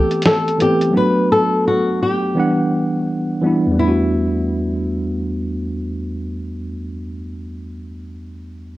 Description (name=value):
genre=lo-fi hip hop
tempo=85 BPM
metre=4/4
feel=swing 64% on 16ths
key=E minor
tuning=A4 = 439 Hz
part: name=flamenco guitar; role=melody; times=0.0-6.8 s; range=E4 to B4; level=-18 LUFS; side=left 2 dB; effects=plate reverb
part: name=tine electric piano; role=accompaniment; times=0.0-8.8 s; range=E2 to F#5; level=-19 LUFS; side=equal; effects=medium stereo tremolo, cassette tape
part: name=lo-fi sampler-style drum kit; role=drums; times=0.1-0.9 s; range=hi-hat, snare drum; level=-18 LUFS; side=equal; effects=none
room=wet studio reverb, RT60 0.6 s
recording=worn, warbling old tape, cassette tape, warbly pitch drift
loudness=-16 LUFS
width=side -17 dB against mid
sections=0.0-3.8 A section; 3.8-6.6 B section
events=none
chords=0.0 Am9; 0.9 Bm7; 2.4 Em7; 3.8 Em11